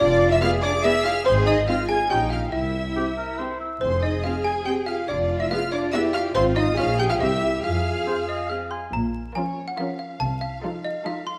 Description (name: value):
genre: cinematic, playful, whimsical film cue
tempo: 141 BPM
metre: 3/4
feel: straight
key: unclear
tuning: A4 = 438 Hz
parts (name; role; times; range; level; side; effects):
- trough xylophone with plastic mallets; melody; 0.0-11.4 s; C5 to C6; -30 LUFS; equal; none
- warm studio violin section; melody; 0.0-11.4 s; Db5 to Ab6; -35 LUFS; equal; none
- rich studio violin section; second line; 0.0-11.4 s; F4 to Ab5; -31 LUFS; equal; none
- small flute group; second line; 0.0-8.5 s; C5 to Ab5; -33 LUFS; equal; none
- dark French horn section; sustained chords; 0.0-8.5 s; C4 to Ab4; -32 LUFS; equal; none
- clear studio cello section; bass; 0.0-10.6 s; Bb2 to Ab4; -30 LUFS; equal; none
- warm studio double bass section; bass; 0.0-10.5 s; F1 to F2; -30 LUFS; equal; none
- rich studio viola section; accompaniment; 0.4-11.4 s; F3 to Ab4; -33 LUFS; equal; none
- mellow oboe; second line; 3.0-3.8, 8.1-8.9 s; G4 to Ab5; -34 LUFS; equal; none
room: moderate scoring stage reverb, RT60 1.6 s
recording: vinyl crackle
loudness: -23 LUFS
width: mono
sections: 0.0-8.9 A section; 8.9-11.4 B section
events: none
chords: 0.0 Fdim; 1.3 Fm/Ab; 2.1 Bbm; 2.5 C; 3.8 Fm; 5.1 Fdim; 6.4 Fm/Ab; 6.8 Bbm; 7.2 C; 7.6 Fm; 8.9 Bbm; 10.2 F7/C